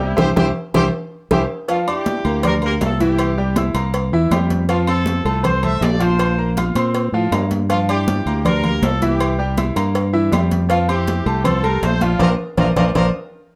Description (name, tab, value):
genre	latin, salsa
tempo	160 BPM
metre	4/4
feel	straight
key	F major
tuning	A4 = 441 Hz
part	warm horn section	melody	0.0-13.1 s	C4 to E5	-26 LUFS	equal	none
part	bright grand piano	accompaniment	0.0-13.1 s	E3 to F6	-24 LUFS	equal	none
part	fingered electric bass	bass	0.0-13.1 s	Bb1 to Bb2	-22 LUFS	equal	none
part	bongos and cowbell	percussion	0.0-13.0 s	none	-28 LUFS	equal	none
part	congas	percussion	0.2-13.0 s	none	-25 LUFS	equal	none
part	timbales and agogo bells	percussion	0.2-13.0 s	none	-29 LUFS	equal	none
room	light reverb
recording	none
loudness	-18 LUFS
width	mono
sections	0.0-1.7 A section; 1.7-13.6 B section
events	drum fill 0.2-1.7, 12.6-13.6; band accent 0.2-1.7, 12.2-13.6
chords	0.2 C; 1.7 Gm7; 3.2 C7; 4.7 F; 6.2 Bbsus2; 7.7 Gm7; 9.2 C7; 10.7 F; 12.2 Bbadd9